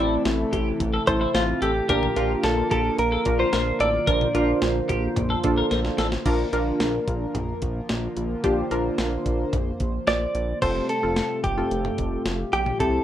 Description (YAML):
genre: synth-pop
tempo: 110 BPM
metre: 4/4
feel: straight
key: unclear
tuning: A4 = 440 Hz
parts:
  - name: direct-recorded clean electric guitar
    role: melody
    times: 0.0-4.6, 10.1-13.0 s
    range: F4 to D5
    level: -24 LUFS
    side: equal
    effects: plate reverb
  - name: twelve-string electric guitar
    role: second line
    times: 0.0-6.1 s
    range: E4 to C5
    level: -29 LUFS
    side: left 3 dB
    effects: analog delay, plate reverb
  - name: funky polysynth comp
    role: accompaniment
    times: 0.0-13.0 s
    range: C4 to Bb4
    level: -26 LUFS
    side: equal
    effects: chorus, plate reverb
  - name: chorused pulse-width pad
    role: sustained chords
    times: 0.0-13.0 s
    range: C3 to C5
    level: -29 LUFS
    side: equal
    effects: plate reverb
  - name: chorused synth bass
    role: bass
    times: 0.0-13.0 s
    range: F1 to C2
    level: -28 LUFS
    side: equal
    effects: none
  - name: clean 12-bit digital drum machine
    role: drums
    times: 0.3-12.9 s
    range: crash cymbal, hi-hat, kick drum, snare drum, toms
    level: -29 LUFS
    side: equal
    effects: none
room: moderate studio reverb, RT60 0.5 s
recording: rough home demo mix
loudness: -21 LUFS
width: side -11 dB against mid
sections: 0.0-6.3 A section; 6.3-10.6 B section; 10.6-13.0 C section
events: drum fill 5.7-6.3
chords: 0.0 Am; 1.9 Bb; 10.6 Fadd9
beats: 0.26 0.80 1.35 | 1.89 2.44 2.98 3.53 | 4.08 4.62 5.17 5.71 | 6.26 6.80 7.35 7.89 | 8.44 8.98 9.53 10.07 | 10.62 11.17 11.71 12.26 | 12.80